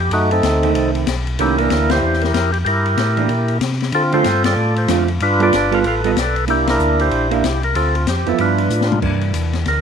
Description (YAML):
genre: soul jazz organ trio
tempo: 188 BPM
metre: 4/4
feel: swing 61% on 8ths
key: C mixolydian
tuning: A4 = 439 Hz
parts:
  - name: percussive tonewheel organ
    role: melody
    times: 0.0-9.8 s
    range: A3 to F5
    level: -18 LUFS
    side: equal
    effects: slow rotary speaker
  - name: mellow tonewheel organ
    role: bass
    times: 0.0-9.8 s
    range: G1 to D3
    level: -20 LUFS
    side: equal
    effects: slow rotary speaker
  - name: open jazz drum kit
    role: drums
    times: 0.1-9.8 s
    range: crash cymbal, hi-hat, kick drum, ride cymbal, snare drum, toms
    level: -24 LUFS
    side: left 8 dB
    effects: none
  - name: hollow-body jazz guitar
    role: accompaniment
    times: 0.6-9.8 s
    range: D3 to A4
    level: -21 LUFS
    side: right 12 dB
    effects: none
room: light reverb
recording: 1960s-style stereo with parts hard left and right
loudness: -14 LUFS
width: side -7 dB against mid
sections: 0.0-9.0 A section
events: band accent 1.9, 4.4, 6.6; drum fill 8.7-9.0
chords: 0.1 F#dim7; 1.4 C9; 3.9 Dm7; 5.2 G9; 6.5 C9; 7.8 Dm7; 8.4 G13; 9.0 C9 (rootless)